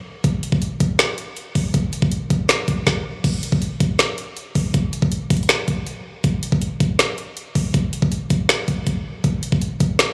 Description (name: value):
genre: hip hop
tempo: 160 BPM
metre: 4/4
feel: half-time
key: none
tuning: none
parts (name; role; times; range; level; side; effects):
- trap drum kit; drums; 0.2-10.1 s; crash cymbal, finger snaps, hi-hat, kick drum, snare drum; -21 LUFS; equal; none
room: light reverb, digital ambience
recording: recorded on a phone in the room, club reverb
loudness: -21 LUFS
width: mono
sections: 0.0-3.2 A section; 3.2-10.1 B section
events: stop 2.9-3.2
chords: none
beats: | 0.24 0.62 0.99 1.37 | 1.74 2.12 2.49 2.87 | 3.24 3.62 3.99 4.37 | 4.74 5.12 5.49 5.87 | 6.24 6.62 6.99 7.37 | 7.74 8.12 8.49 8.87 | 9.24 9.62 9.99